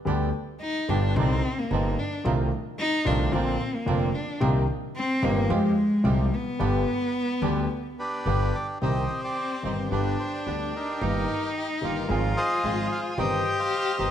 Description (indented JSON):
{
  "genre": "tango",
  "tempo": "110 BPM",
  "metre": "4/4",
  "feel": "rubato",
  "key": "C minor",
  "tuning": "A4 = 441 Hz",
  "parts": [
    { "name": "warm concert grand piano", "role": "accompaniment", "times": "0.1-14.1 s", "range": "F1 to Ab4", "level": "-28 LUFS", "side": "left 2 dB", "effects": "none" },
    { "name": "bandoneon", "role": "stabs", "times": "0.1-14.1 s", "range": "Ab3 to Ab4", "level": "-35 LUFS", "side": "right 7 dB", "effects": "none" },
    { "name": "upright bass", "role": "bass", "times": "0.1-14.1 s", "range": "F1 to F2", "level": "-29 LUFS", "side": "right 2 dB", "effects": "none" },
    { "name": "warm cello", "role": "second line", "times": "0.6-14.1 s", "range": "G3 to G4", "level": "-28 LUFS", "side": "left 1 dB", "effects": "none" },
    { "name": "bandoneon", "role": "melody", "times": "8.0-14.1 s", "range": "D4 to Ab5", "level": "-28 LUFS", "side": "equal", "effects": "none" }
  ],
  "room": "moderate recital hall reverb, RT60 1.4 s",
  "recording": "close, detailed microphones",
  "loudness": "-23 LUFS",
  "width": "side -9 dB against mid",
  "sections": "0.0-8.8 A section; 8.8-14.1 B section",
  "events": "cello solo 0.0-8.8",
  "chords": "0.0 G; 1.2 Cmadd9; 2.3 F7/C; 3.3 Bbadd9; 4.4 Cm7; 5.5 Fmadd9; 6.6 G; 8.8 Cm; 9.9 G; 11.0 Eb/G; 12.1 Fm/Ab; 13.2 Cm/G"
}